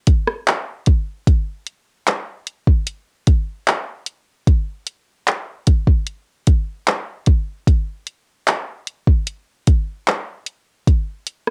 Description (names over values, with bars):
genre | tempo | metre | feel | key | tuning
R&B | 75 BPM | 4/4 | straight | none | none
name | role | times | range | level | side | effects
smooth R&B drum kit | drums | 0.1-11.5 s | handclaps, hi-hat, kick drum, rim click | -17 LUFS | equal | cassette tape
room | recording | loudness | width
light reverb | home recording on cassette | -20 LUFS | mono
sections
0.0-11.5 A section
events
none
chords
none